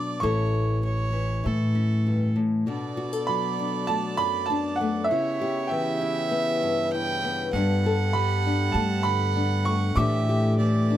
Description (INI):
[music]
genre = acoustic folk duo or small band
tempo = 99 BPM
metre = 4/4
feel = straight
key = B minor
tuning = A4 = 439 Hz
[part]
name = bright upright piano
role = melody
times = 0.0-11.0 s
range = E5 to D6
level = -29 LUFS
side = right 5 dB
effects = none
[part]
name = rich fiddle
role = second line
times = 0.0-11.0 s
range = A4 to G5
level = -31 LUFS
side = right 3 dB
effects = none
[part]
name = nylon-string guitar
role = accompaniment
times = 0.0-11.0 s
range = F#2 to A4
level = -28 LUFS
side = left 3 dB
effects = none
[part]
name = upright bass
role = bass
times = 0.0-2.6, 7.5-11.0 s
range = A1 to B2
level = -24 LUFS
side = equal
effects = none
[part]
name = pedal harmonium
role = sustained chords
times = 2.7-11.0 s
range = C#3 to D5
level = -35 LUFS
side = equal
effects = none
[sound]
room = little or no reverb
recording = close, detailed microphones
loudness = -22 LUFS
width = side -12 dB against mid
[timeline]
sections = 0.0-2.7 A section; 2.7-11.0 B section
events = none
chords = 0.2 A; 2.7 Bm7; 5.1 C#m7b5; 7.5 Gadd9; 10.0 A7sus4